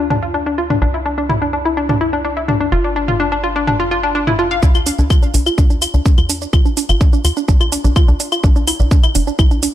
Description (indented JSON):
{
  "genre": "melodic techno",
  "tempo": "126 BPM",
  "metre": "4/4",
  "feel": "straight",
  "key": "D minor",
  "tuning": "A4 = 439 Hz",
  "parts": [
    { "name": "analog pluck", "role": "arpeggios", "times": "0.0-9.7 s", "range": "D4 to F5", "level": "-18 LUFS", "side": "left 1 dB", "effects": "chorus, sidechain pumping, ping-pong delay" },
    { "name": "tight sequencer bass", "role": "bass", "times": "0.0-9.7 s", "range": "G1 to E2", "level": "-20 LUFS", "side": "equal", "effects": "sidechain pumping" },
    { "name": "house drum kit", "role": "drums", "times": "0.1-9.7 s", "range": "claves, hi-hat, shaker, toms", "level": "-20 LUFS", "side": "equal", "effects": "none" },
    { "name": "electronic kick drum", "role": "drums", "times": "4.6-9.5 s", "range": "none", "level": "-11 LUFS", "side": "equal", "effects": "none" }
  ],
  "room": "light reverb, digital ambience",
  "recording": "none",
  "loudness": "-13 LUFS",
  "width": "side -12 dB against mid",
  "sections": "0.0-4.6 A section; 4.6-9.7 B section",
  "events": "filter sweep on synth pluck 0.0-4.6, 4.6-9.7; build-up 4.6-9.7",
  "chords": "0.0 Dm; 0.8 C; 2.7 G5; 4.6 Dm7; 8.4 C"
}